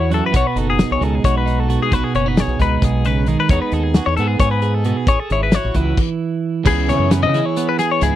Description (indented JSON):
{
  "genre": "math rock and midwest emo",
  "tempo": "266 BPM (eighths)",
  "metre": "7/8",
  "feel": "straight",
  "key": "unclear",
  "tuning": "A4 = 440 Hz",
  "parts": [
    { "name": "twelve-string electric guitar", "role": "accompaniment", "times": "0.0-8.2 s", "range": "F#2 to G#4", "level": "-20 LUFS", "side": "right 6 dB", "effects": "none" },
    { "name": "twelve-string electric guitar", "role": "arpeggios", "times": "0.0-8.2 s", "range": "G#4 to D#5", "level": "-20 LUFS", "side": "left 8 dB", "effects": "none" },
    { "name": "growling fingered electric bass", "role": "bass", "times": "0.0-8.1 s", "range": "F#1 to C#3", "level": "-19 LUFS", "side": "equal", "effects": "overdrive" },
    { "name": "loose indie drum kit", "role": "drums", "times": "0.1-8.1 s", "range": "crash cymbal, hi-hat, kick drum, snare drum", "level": "-18 LUFS", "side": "left 1 dB", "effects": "none" }
  ],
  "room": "little or no reverb",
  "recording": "dry, close 1970s-style studio recording",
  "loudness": "-15 LUFS",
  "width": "side -12 dB against mid",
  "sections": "0.0-6.7 A section; 6.7-8.2 B section",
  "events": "stop 6.0-6.7",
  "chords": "0.3 G#m7; 3.5 Emaj7 (rootless); 5.1 Amaj7; 6.7 C#m7"
}